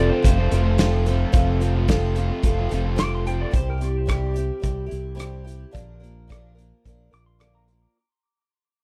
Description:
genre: folk rock and heartland rock.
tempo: 109 BPM.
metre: 4/4.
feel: straight.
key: unclear.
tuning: A4 = 439 Hz.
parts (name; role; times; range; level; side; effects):
pedal steel guitar; second line; 0.0-7.9 s; G4 to D6; -34 LUFS; equal; tape echo.
picked twelve-string acoustic guitar; accompaniment; 0.0-8.0 s; Bb2 to Bb4; -31 LUFS; equal; none.
overdriven electric guitar; riff; 0.0-3.5 s; F2 to F4; -31 LUFS; equal; none.
modern bright fingered electric bass; bass; 0.0-7.9 s; F1 to C2; -26 LUFS; equal; none.
loose indie drum kit; drums; 0.2-7.8 s; hi-hat, kick drum, rim click, snare drum; -23 LUFS; equal; none.
room: little or no reverb.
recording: none.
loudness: -22 LUFS.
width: mono.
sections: 0.0-8.0 A section.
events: fade-out 0.0-8.0; pedal steel guitar solo 0.0-8.0.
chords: 0.0 F; 3.5 C; 5.7 Bb.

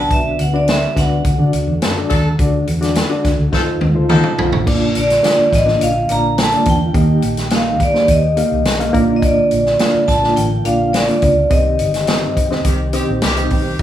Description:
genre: uptempo 1960s-style soul.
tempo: 105 BPM.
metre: 4/4.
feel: straight.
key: unclear.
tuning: A4 = 437 Hz.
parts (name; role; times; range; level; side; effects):
vibraphone with medium hard mallets; melody; 0.0-1.5, 5.0-12.6 s; D5 to Bb5; -17 LUFS; equal; tape echo.
reed electric piano; accompaniment; 0.0-13.8 s; Bb3 to F5; -20 LUFS; equal; fast tremolo.
mellow tonewheel organ; sustained chords; 0.0-13.8 s; D3 to G4; -24 LUFS; right 2 dB; slow rotary speaker, chorus vibrato.
vintage muted fingered electric bass; bass; 0.0-13.8 s; F1 to D3; -19 LUFS; equal; none.
swinging big-band drum kit; drums; 0.1-13.8 s; crash cymbal, hi-hat, kick drum, snare drum, toms; -19 LUFS; equal; none.
warm horn section; second line; 1.8-4.5, 12.7-13.8 s; Eb3 to A4; -22 LUFS; left 1 dB; none.
room: moderate small room reverb, RT60 0.6 s.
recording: studio reverb.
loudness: -13 LUFS.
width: side -11 dB against mid.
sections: 0.0-2.4 A section; 2.4-4.7 B section; 4.7-13.8 C section.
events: vibraphone solo 0.0-2.4; drum fill 3.5-4.7; band accent 11.5-13.8.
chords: 0.0 Bm; 1.3 D; 3.5 F7; 4.7 Bb; 6.9 Eb; 8.9 Bb; 11.5 Cm.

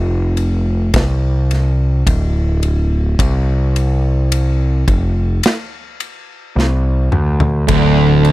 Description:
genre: stoner and doom metal.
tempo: 53 BPM.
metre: 4/4.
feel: straight.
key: D minor.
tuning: A4 = 440 Hz.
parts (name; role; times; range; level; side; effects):
growling picked electric bass; bass; 0.0-8.3 s; D1 to D2; -14 LUFS; equal; overdrive.
big rock drum kit; drums; 0.4-8.3 s; kick drum, ride cymbal, snare drum, toms; -18 LUFS; equal; none.
tonewheel organ; sustained chords; 7.7-8.3 s; D3 to D4; -20 LUFS; right 1 dB; overdrive, chorus vibrato, slow rotary speaker.
thick fuzz guitar; riff; 7.7-8.3 s; D2; -13 LUFS; left 6 dB; distortion.
thick fuzz guitar; riff; 7.7-8.3 s; D2; -13 LUFS; right 8 dB; distortion.
room: little or no reverb.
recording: dry, close 1970s-style studio recording.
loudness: -13 LUFS.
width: side -16 dB against mid.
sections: 0.0-8.3 A section.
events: drum fill 6.6-7.7.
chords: 0.0 Dm.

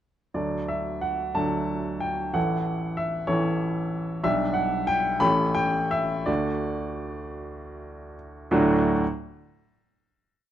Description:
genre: classical, romantic character piece for solo piano.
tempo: 52-64 BPM (dotted quarters).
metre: 6/8.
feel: rubato.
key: D major.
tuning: A4 = 442 Hz.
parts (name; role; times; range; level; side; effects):
clear baby grand piano; solo; 0.3-9.0 s; A1 to B5; -24 LUFS; equal; none.
room: light reverb.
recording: dark, warm production.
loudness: -23 LUFS.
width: side -11 dB against mid.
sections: 0.4-8.5 A section; 8.5-10.5 final chord.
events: slowing down 3.3-8.5.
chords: 0.4 D; 2.4 A; 4.3 G/B; 5.2 A7; 6.3 D.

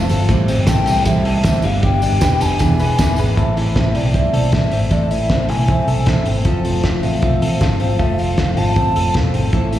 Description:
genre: jangly indie pop.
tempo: 156 BPM.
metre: 4/4.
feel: straight.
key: A minor, A harmonic minor from 3.4 s.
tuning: A4 = 442 Hz.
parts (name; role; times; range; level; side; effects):
fingerpicked steel-string acoustic guitar; accompaniment; 0.0-9.8 s; A2 to G#4; -22 LUFS; right 5 dB; slapback echo.
direct-recorded clean electric guitar; arpeggios; 0.0-9.8 s; A2 to B4; -22 LUFS; left 5 dB; analog chorus, slapback echo, digital delay.
vintage muted picked electric bass; bass; 0.0-9.8 s; E1 to C2; -18 LUFS; equal; none.
cloth-damped thuddy drum kit; drums; 0.1-9.8 s; hi-hat, kick drum, ride cymbal, snare drum; -20 LUFS; equal; none.
tambourine; percussion; 0.1-3.3 s; none; -34 LUFS; right 3 dB; none.
breathy alto ocarina; melody; 0.7-9.2 s; D5 to A5; -23 LUFS; left 2 dB; slapback echo, digital delay.
room: light reverb, small room ambience.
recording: live gig heard through the venue's PA, recital hall reverb.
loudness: -14 LUFS.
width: side -13 dB against mid.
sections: 0.0-3.4 A section; 3.4-9.8 B section.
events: none.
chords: 0.3 Am7; 1.6 G; 2.6 E7; 3.4 Am; 6.5 F.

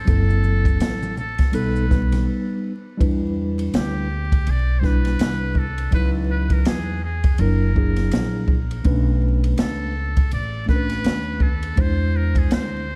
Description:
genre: hip hop, jazz-hop.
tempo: 82 BPM.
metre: 4/4.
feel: swing 60% on 16ths.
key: E minor.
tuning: A4 = 440 Hz.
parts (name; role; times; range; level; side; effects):
trumpet with metal mute; melody; 0.0-13.0 s; G4 to D5; -33 LUFS; equal; diffuse ambient delay.
upright bass; bass; 0.0-13.0 s; F#1 to E2; -24 LUFS; equal; none.
mellow tine electric piano; accompaniment; 0.1-12.9 s; F#3 to B#4; -28 LUFS; equal; none.
open jazz drum kit; drums; 0.1-12.7 s; hi-hat, kick drum, ride cymbal, snare drum; -23 LUFS; equal; none.
maracas and congas; percussion; 0.1-2.3 s; none; -37 LUFS; equal; none.
room: light reverb, small room reverb.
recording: vinyl crackle.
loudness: -21 LUFS.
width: mono.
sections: 0.0-3.0 A section; 3.0-13.0 A section.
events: break 2.3-3.0.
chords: 0.1 F#m7b5; 1.5 B7b13; 3.0 Em7; 5.9 C#m11; 7.4 F#7b13; 8.9 Bm9; 11.8 E7b13.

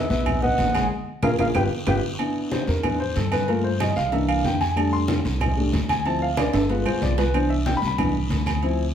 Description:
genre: Afro-Cuban jazz.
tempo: 187 BPM.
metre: 4/4.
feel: straight.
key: C major.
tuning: A4 = 438 Hz.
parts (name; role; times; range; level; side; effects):
trumpet with bucket mute; melody; 0.0-2.0 s; E5 to G5; -27 LUFS; equal; plate reverb.
warm upright piano; accompaniment; 0.0-8.8 s; E3 to C6; -24 LUFS; left 1 dB; none.
upright bass; bass; 0.0-8.9 s; G1 to G2; -25 LUFS; right 1 dB; none.
congas; percussion; 0.1-8.9 s; none; -29 LUFS; left 1 dB; none.
guiro; percussion; 0.1-8.9 s; none; -37 LUFS; left 2 dB; none.
agogo bells and timbales; percussion; 0.3-8.8 s; none; -29 LUFS; right 4 dB; none.
claves; percussion; 0.3-8.6 s; none; -38 LUFS; right 8 dB; none.
room: wet studio reverb, RT60 0.9 s.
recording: heard from further back in the room.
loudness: -20 LUFS.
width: side -9 dB against mid.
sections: 0.0-2.2 A section; 2.2-8.9 A section.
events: muted trumpet solo 0.0-2.2; band accent 0.9-2.2; drum fill 1.6-2.2, 6.4-7.3; upright piano solo 2.2-8.9.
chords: 0.0 Emaj9; 0.9 Bb5; 1.6 G7; 2.2 Em7; 3.5 Gm9; 4.1 C9; 4.8 F69; 6.1 Dm7; 6.7 G7b9; 7.3 Cmaj9.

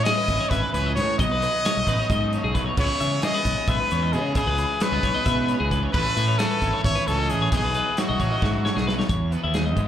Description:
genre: math rock and midwest emo.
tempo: 265 BPM (eighths).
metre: 7/8.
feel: straight.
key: unclear.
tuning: A4 = 443 Hz.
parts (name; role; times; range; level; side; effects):
brilliant trumpet; melody; 0.0-8.9 s; F#4 to D#5; -25 LUFS; left 2 dB; slapback echo, digital delay.
twangy electric guitar; accompaniment; 0.0-9.9 s; E2 to A4; -32 LUFS; right 6 dB; spring reverb, slapback echo.
twelve-string electric guitar; arpeggios; 0.0-9.9 s; E4 to E5; -29 LUFS; left 4 dB; slapback echo.
biting overdriven guitar; riff; 0.0-9.9 s; A2 to A4; -34 LUFS; right 2 dB; slapback echo.
modern studio drum kit; drums; 0.1-9.9 s; crash cymbal, hi-hat, kick drum, snare drum; -27 LUFS; equal; none.
fuzz fingered electric bass; bass; 0.3-9.9 s; G#1 to C#3; -25 LUFS; equal; overdrive.
room: little or no reverb.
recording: live gig heard through the venue's PA, club reverb.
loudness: -20 LUFS.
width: side -10 dB against mid.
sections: 0.0-9.1 A section.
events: drum fill 8.4-9.1.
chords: 0.0 Amaj9; 1.2 B13; 2.8 C#m9; 5.9 Amaj9; 7.5 B13sus4; 9.1 Emaj7.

